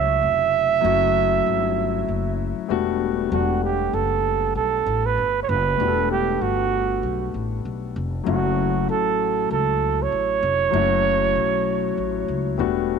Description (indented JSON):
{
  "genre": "hip hop, jazz-hop",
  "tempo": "97 BPM",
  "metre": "4/4",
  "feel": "swing 62% on 16ths",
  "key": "E dorian",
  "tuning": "A4 = 440 Hz",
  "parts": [
    { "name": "breathy flugelhorn", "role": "melody", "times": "0.0-12.6 s", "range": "F#4 to E5", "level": "-21 LUFS", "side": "right 9 dB", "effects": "none" },
    { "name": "dark concert grand piano", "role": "accompaniment", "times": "0.0-13.0 s", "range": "C#3 to F#5", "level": "-25 LUFS", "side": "left 14 dB", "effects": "none" },
    { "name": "upright bass", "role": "bass", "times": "0.0-13.0 s", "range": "E1 to C#2", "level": "-27 LUFS", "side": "left 1 dB", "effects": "none" }
  ],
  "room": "light reverb",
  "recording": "1960s-style stereo with parts hard left and right",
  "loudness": "-19 LUFS",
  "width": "side -6 dB against mid",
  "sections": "0.0-3.3 A section; 3.3-13.0 B section",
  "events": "none",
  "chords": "0.0 F#m7; 2.7 Em11; 8.3 F#m7"
}